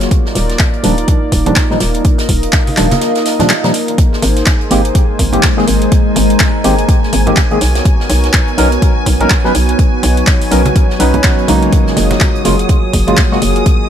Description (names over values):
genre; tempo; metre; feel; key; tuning
deep house; 124 BPM; 4/4; swing 59% on 16ths; unclear; A4 = 441 Hz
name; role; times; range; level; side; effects
warm analog pad; sustained chords; 0.0-13.9 s; Bb3 to Eb5; -20 LUFS; equal; chorus, sidechain pumping
hollow knocking FM bass; bass; 0.0-13.6 s; Eb1 to B1; -14 LUFS; equal; tube saturation, sidechain pumping
deep house drum kit; drums; 0.0-13.8 s; handclaps, hi-hat; -18 LUFS; equal; small room reverb
natural country drum kit; drums; 0.0-13.8 s; hi-hat, snare drum; -26 LUFS; right 2 dB; high-pass filter on hats, small room reverb, high-pass filter on snare, high-pass filter on room
warbly tape-like pad; texture; 0.0-13.9 s; F#3 to Bb5; -20 LUFS; equal; chorus, built-in reverb, sidechain pumping
electronic kick drum; drums; 0.1-13.8 s; none; -12 LUFS; equal; small room reverb
percussive organ stab; stabs; 0.8-13.4 s; Bb2 to B4; -16 LUFS; equal; lush chorus, sidechain pumping, digital delay
congas; percussion; 1.5-13.2 s; none; -19 LUFS; right 3 dB; none
soft string machine; texture; 4.0-13.9 s; Ab5 to Eb6; -24 LUFS; left 1 dB; ensemble chorus, sidechain pumping
room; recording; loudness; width
small room ambience; none; -9 LUFS; side -9 dB against mid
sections
0.0-13.9 A section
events
filter sweep on synth stab 0.0-13.9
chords
0.1 Ebmaj9; 4.0 Abmaj9; 7.6 Bmaj9; 11.7 Gbmaj9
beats
| 0.11 0.60 1.08 1.56 | 2.05 2.53 3.02 3.50 | 3.98 4.47 4.95 5.43 | 5.92 6.40 6.89 7.37 | 7.85 8.34 8.82 9.30 | 9.79 10.27 10.76 11.24 | 11.72 12.21 12.69 13.18 | 13.66